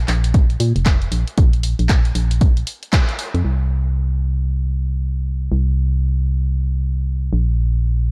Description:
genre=deep house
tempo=116 BPM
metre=4/4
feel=swing 61% on 16ths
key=unclear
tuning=A4 = 440 Hz
part: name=organ-like FM bass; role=bass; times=0.0-8.1 s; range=F1 to Bb2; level=-20 LUFS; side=equal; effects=sidechain pumping
part: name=punchy analog drum machine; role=drums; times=0.1-3.4 s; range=handclaps, hi-hat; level=-28 LUFS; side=equal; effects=none
part: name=electronic kick drum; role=drums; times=0.3-3.1 s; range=none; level=-17 LUFS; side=equal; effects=none
room=little or no reverb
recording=dark, warm production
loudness=-19 LUFS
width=mono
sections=0.0-3.4 A section; 3.4-8.1 B section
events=band accent 2.9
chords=none

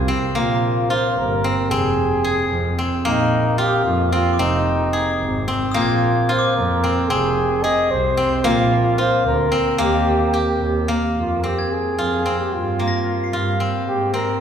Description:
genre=contemporary instrumental, chamber music in an uneven meter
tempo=223 BPM (eighths)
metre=5/8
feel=straight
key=F dorian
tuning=A4 = 440 Hz
part: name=breathy flugelhorn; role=melody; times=0.0-14.4 s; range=Eb4 to Eb5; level=-22 LUFS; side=equal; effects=none
part: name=steel-string zither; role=arpeggios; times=0.0-14.4 s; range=Bb3 to Ab4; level=-20 LUFS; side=left 1 dB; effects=none
part: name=bright double bass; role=bass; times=0.0-14.4 s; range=F1 to Ab2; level=-22 LUFS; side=right 2 dB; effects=none
part: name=glockenspiel with hard plastic mallets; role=texture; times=0.6-1.2, 3.7-7.1, 11.6-13.9 s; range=Bb5 to C7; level=-31 LUFS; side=equal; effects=none
room=wet recital hall reverb, RT60 1.8 s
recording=recorded in a church or concert hall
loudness=-17 LUFS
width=side -8 dB against mid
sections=0.4-11.2 A section; 11.2-14.4 B section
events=none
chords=0.4 Bb5; 1.7 Fm; 3.1 Bbsus4; 4.4 Fm7; 5.8 Bbsus4; 7.1 Fm; 8.4 Bb5; 9.8 Eb; 11.2 Fm; 12.5 Gm7; 13.9 Abmaj7

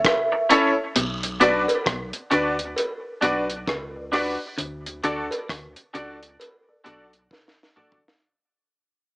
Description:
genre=roots reggae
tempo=66 BPM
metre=4/4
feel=swing 61% on 16ths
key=B minor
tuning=A4 = 443 Hz
part: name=vibraphone with medium hard mallets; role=melody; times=0.0-0.5 s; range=E5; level=-25 LUFS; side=right 1 dB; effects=tape echo
part: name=deep reggae drum kit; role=drums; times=0.0-8.3 s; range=hi-hat, kick drum, rim click, snare drum, toms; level=-26 LUFS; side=equal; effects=none
part: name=cowbell and jawbone-type rattle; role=percussion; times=0.0-7.6 s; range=none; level=-29 LUFS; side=equal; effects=none
part: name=semi-hollow electric guitar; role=accompaniment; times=0.3-8.0 s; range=C#4 to D5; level=-23 LUFS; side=equal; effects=analog chorus, tape echo
part: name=clear concert grand piano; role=stabs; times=0.5-8.0 s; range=C#4 to D5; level=-23 LUFS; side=left 1 dB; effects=none
part: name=clean electric guitar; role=riff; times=1.0-7.1 s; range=B2 to D3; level=-30 LUFS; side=left 1 dB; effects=warbly pitch drift
part: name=soft dub sub bass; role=bass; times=1.0-7.3 s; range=B1 to D2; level=-38 LUFS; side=equal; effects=none
room=moderate studio reverb, RT60 0.6 s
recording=small speaker sound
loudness=-21 LUFS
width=side -23 dB against mid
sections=1.0-8.2 A section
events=fade-out 1.0-8.2; drum fill 7.3-8.2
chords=0.0 A; 1.0 Bm; 4.6 D

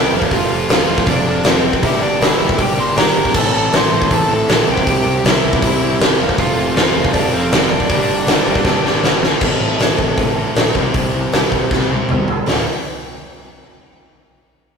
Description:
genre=punk rock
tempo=158 BPM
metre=4/4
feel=straight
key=D minor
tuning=A4 = 439 Hz
part: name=bluesy overdriven lead guitar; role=melody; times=0.0-9.0 s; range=C4 to C6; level=-21 LUFS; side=equal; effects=distortion, digital delay
part: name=biting overdriven guitar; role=riff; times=0.0-12.6 s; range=D2 to C5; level=-24 LUFS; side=left 4 dB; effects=none
part: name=crunchy overdriven guitar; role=riff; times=0.0-12.6 s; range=D2 to C5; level=-21 LUFS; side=right 3 dB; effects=none
part: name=crunchy overdriven guitar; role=riff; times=0.0-9.4 s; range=F2 to C4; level=-26 LUFS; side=equal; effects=none
part: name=modern bright picked electric bass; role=bass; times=0.0-12.6 s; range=D1 to C2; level=-26 LUFS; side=equal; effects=none
part: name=big rock drum kit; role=drums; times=0.2-12.6 s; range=crash cymbal, hi-hat, kick drum, snare drum, toms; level=-15 LUFS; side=equal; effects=none
room=moderate booth ambience, RT60 0.2 s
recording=rough rehearsal-room recording, tube saturation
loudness=-13 LUFS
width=side -6 dB against mid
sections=0.0-9.4 A section; 9.4-12.5 B section; 12.5-14.0 C section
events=drum fill 8.7-9.4, 11.7-12.5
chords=0.1 F; 1.8 Gm; 3.4 Am; 4.7 C; 6.2 F; 7.9 Gm; 9.4 Am; 10.7 C; 12.5 Dm

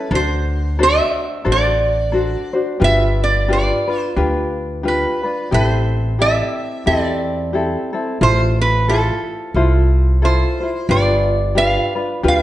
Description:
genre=Hawaiian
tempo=89 BPM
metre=4/4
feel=swing 59% on 8ths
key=unclear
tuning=A4 = 440 Hz
part: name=lap resonator guitar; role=melody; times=0.0-12.4 s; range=A4 to F5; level=-19 LUFS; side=right 2 dB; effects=none
part: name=tenor ukulele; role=accompaniment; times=0.0-12.4 s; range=C4 to C5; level=-20 LUFS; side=left 2 dB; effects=none
part: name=upright bass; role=bass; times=0.1-12.4 s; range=G1 to E2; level=-18 LUFS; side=equal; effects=none
room=moderate recital hall reverb, RT60 1.3 s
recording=nothing above 10.6 kHz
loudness=-15 LUFS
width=side -14 dB against mid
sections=0.0-12.4 A section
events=none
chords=0.1 D7; 2.8 G7; 5.5 Am7; 8.2 Fmaj7/A; 10.9 G7

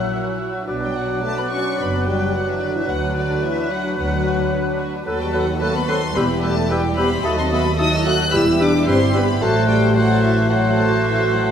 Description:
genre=quick classical-period movement for symphony orchestra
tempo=110 BPM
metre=4/4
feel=straight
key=B minor, E minor from 5.1 s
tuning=A4 = 443 Hz
part: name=warm studio violin section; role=melody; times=0.0-11.5 s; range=D5 to F#6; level=-27 LUFS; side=left 4 dB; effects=none
part: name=clear oboe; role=second line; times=0.0-11.5 s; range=A4 to E5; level=-30 LUFS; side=equal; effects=none
part: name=mellow clarinet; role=second line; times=0.0-11.5 s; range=F#4 to A4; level=-28 LUFS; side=equal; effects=none
part: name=mellow hollow concert flute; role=second line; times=0.0-11.5 s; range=D#6 to F#6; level=-28 LUFS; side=left 2 dB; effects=none
part: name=warm studio violin section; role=second line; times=0.0-11.5 s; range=A#3 to D#5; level=-28 LUFS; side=left 3 dB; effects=none
part: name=warm bassoon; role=accompaniment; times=0.0-11.5 s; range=F#3 to A3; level=-27 LUFS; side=right 1 dB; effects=none
part: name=warm studio viola section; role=accompaniment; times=0.0-11.5 s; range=F#3 to F#4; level=-26 LUFS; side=right 4 dB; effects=none
part: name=dark French horn section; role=sustained chords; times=0.0-11.5 s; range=D3 to F#4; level=-24 LUFS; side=left 3 dB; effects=none
part: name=dark studio double bass section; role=bass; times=0.0-11.5 s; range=E1 to D#2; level=-26 LUFS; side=right 3 dB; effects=none
part: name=warm studio cello section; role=bass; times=0.0-11.5 s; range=D2 to B2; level=-24 LUFS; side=right 1 dB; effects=none
room=moderate scoring stage reverb, RT60 1.7 s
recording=none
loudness=-16 LUFS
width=side -8 dB against mid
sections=0.0-11.5 A section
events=none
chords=0.0 F#7; 0.7 Bm; 2.9 Bm/D; 5.1 B7/D#; 6.2 Em; 7.2 D#dim; 8.3 Em; 9.4 F#dim/A

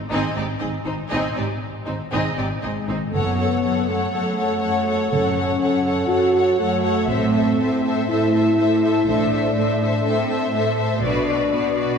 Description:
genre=cinematic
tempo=121 BPM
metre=4/4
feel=straight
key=unclear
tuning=A4 = 439 Hz
part: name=warm symphonic violin section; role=second line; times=0.1-12.0 s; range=D#4 to D#5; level=-28 LUFS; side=left 2 dB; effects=none
part: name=warm symphonic viola section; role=accompaniment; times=0.1-12.0 s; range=B#3 to A4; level=-26 LUFS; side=right 2 dB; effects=none
part: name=clear symphonic cello section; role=bass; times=0.1-11.9 s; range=F#2 to B2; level=-26 LUFS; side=right 4 dB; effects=none
part: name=dark symphonic double bass section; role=bass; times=0.1-11.4 s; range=F#1 to B1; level=-30 LUFS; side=right 2 dB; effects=none
part: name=dark French horn section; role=sustained chords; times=2.6-12.0 s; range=G#3 to F#4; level=-21 LUFS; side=left 2 dB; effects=none
part: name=warm symphonic violin section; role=melody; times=3.1-12.0 s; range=D5 to F#5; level=-26 LUFS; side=left 4 dB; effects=none
room=wet church reverb, RT60 2.8 s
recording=recorded in a church or concert hall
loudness=-18 LUFS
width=side -6 dB against mid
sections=0.0-3.1 A section; 3.1-12.0 B section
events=build-up 0.0-3.1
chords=0.0 G#; 3.1 F#m; 7.1 Am; 11.0 Bm

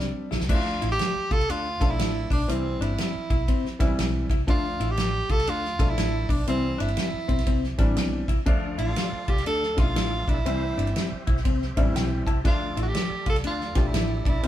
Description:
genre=uptempo 1960s-style soul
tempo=120 BPM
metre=4/4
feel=swing 64% on 8ths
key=unclear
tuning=A4 = 440 Hz
part: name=clear tenor saxophone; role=melody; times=0.0-14.5 s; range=C4 to A4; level=-29 LUFS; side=right 2 dB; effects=none
part: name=warm upright piano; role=accompaniment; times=0.0-14.5 s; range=E3 to A5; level=-30 LUFS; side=left 1 dB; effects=none
part: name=vintage muted fingered electric bass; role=bass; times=0.0-14.5 s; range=G1 to D2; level=-29 LUFS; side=equal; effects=none
part: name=vintage hollow-body jazz guitar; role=riff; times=0.3-14.5 s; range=C4 to F4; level=-32 LUFS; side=left 4 dB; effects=none
part: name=natural country drum kit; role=drums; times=0.3-14.5 s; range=crash cymbal, hi-hat, kick drum, ride cymbal, snare drum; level=-26 LUFS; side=equal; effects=none
part: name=percussive tonewheel organ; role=sustained chords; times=8.5-14.5 s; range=G4 to F5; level=-40 LUFS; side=right 1 dB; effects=slow rotary speaker, overdrive, chorus vibrato
room=moderate stone room reverb, RT60 0.9 s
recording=band playing live in one room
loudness=-22 LUFS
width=side -12 dB against mid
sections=0.5-14.5 A section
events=drum fill 0.0-0.5; upright piano fill 11.5-12.4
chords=0.5 Dm; 2.5 C; 4.5 Dm; 6.5 C; 8.5 Dm; 10.5 C; 12.4 Dm

